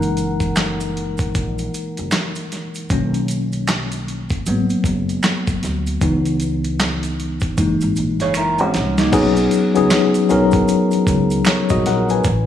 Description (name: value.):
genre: R&B, neo-soul.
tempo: 77 BPM.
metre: 4/4.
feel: swing 60% on 16ths.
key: B major.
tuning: A4 = 440 Hz.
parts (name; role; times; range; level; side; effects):
tine electric piano; accompaniment; 0.0-12.5 s; D#3 to G#5; -18 LUFS; left 2 dB; medium stereo tremolo.
upright bass; bass; 0.0-12.4 s; F#1 to D2; -23 LUFS; right 1 dB; none.
dusty soul sampler-style drum kit; drums; 0.0-12.5 s; crash cymbal, handclaps, hi-hat, kick drum, snare drum; -22 LUFS; equal; overdrive.
maracas and finger snaps; percussion; 0.0-12.5 s; none; -32 LUFS; right 5 dB; none.
electric guitar through a small old amp; second line; 8.2-9.4 s; A#3 to C#5; -22 LUFS; right 3 dB; none.
room: moderate plate reverb, RT60 2.5 s.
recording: studio reverb.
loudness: -16 LUFS.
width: side -10 dB against mid.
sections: 0.0-9.1 A section; 9.1-12.5 B section.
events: tine electric piano solo 0.0-9.1; drum fill 8.4-9.1.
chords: 0.0 F#13; 2.9 Bmaj9; 4.5 G#m9 (rootless); 6.0 C#m7; 7.6 F#13; 9.1 B69.